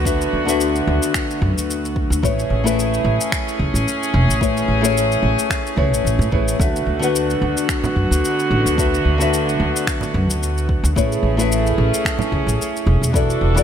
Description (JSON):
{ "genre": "sunset chillout", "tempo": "110 BPM", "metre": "4/4", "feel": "swing 54% on 16ths", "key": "A major", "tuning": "A4 = 442 Hz", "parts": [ { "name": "nylon-string guitar", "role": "accompaniment", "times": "0.0-13.6 s", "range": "D3 to F#5", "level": "-21 LUFS", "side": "moving between left 4 dB and right 3 dB", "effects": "auto-pan, tape echo" }, { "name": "rich chamber string section", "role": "sustained chords", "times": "0.0-13.6 s", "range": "D3 to A4", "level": "-23 LUFS", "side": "equal", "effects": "none" }, { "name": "upright bass", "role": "bass", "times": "0.0-13.6 s", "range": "E1 to A2", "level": "-19 LUFS", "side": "equal", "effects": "none" }, { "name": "electronic kick drum", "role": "drums", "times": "0.1-13.3 s", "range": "none", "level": "-23 LUFS", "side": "equal", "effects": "small room ambience" }, { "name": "electronic shaker and finger snaps", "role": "drums", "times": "0.1-13.6 s", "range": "none", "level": "-26 LUFS", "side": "left 1 dB", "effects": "small room ambience" }, { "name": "congas", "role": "percussion", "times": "7.8-12.3 s", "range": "none", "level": "-25 LUFS", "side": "right 5 dB", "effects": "none" } ], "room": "light reverb, studio reverb", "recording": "none", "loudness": "-16 LUFS", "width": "side -9 dB against mid", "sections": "0.0-13.6 A section", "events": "none", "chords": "0.0 D6; 2.2 Amaj9; 6.6 D6; 11.0 Amaj9" }